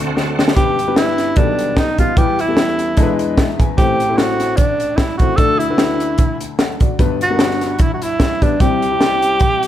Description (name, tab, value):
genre	uptempo gospel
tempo	149 BPM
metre	4/4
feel	swing 55% on 8ths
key	G major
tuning	A4 = 440 Hz
part	clear upright piano	accompaniment	0.0-9.7 s	G1 to G#5	-20 LUFS	left 4 dB	none
part	bright tonewheel organ	sustained chords	0.0-0.6 s	D3 to F#4	-22 LUFS	right 3 dB	slow rotary speaker, overdrive, chorus vibrato
part	crisp fusion drum kit	drums	0.2-9.7 s	hi-hat, kick drum, snare drum	-16 LUFS	equal	none
part	breathy tenor saxophone	melody	0.6-9.7 s	D4 to A4	-17 LUFS	right 1 dB	none
room	light reverb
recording	none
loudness	-13 LUFS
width	side -11 dB against mid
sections	0.6-9.7 A section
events	drum fill 0.2-0.6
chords	0.0 D7; 0.6 G; 1.4 B7alt; 2.2 Em; 3.0 E7; 3.8 Am; 5.4 D; 7.0 G; 8.6 C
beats	0.17 | 0.57 0.97 1.37 1.77 | 2.17 2.57 2.97 3.38 | 3.78 4.18 4.58 4.98 | 5.38 5.79 6.19 6.59 | 6.99 7.39 7.80 8.20 | 8.60 9.00 9.41